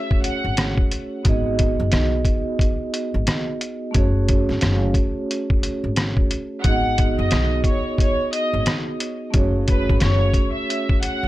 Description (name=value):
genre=hip hop, boom-bap hip-hop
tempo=89 BPM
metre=4/4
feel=swing 60% on 16ths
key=F# dorian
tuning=A4 = 442 Hz
part: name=rich studio violin section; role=melody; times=0.0-0.7, 6.6-11.3 s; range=B4 to F#5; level=-26 LUFS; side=equal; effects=high-pass filter, low-pass filter, ping-pong delay
part: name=vibraphone with soft mallets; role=accompaniment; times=0.0-11.3 s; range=A3 to D#5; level=-24 LUFS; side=right 2 dB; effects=high-pass filter, low-pass filter
part: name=trip hop sampler-style drum kit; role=drums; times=0.1-11.2 s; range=hi-hat, kick drum, rim click, snare drum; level=-20 LUFS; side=equal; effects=none
part: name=upright bass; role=bass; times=0.4-11.3 s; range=F#1 to B1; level=-22 LUFS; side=equal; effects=none
room=little or no reverb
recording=none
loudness=-18 LUFS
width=side -16 dB against mid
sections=0.0-11.3 A section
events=none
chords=0.0 F#madd9; 1.3 G#m7; 3.9 F#madd9; 6.6 G#m7; 9.3 F#madd9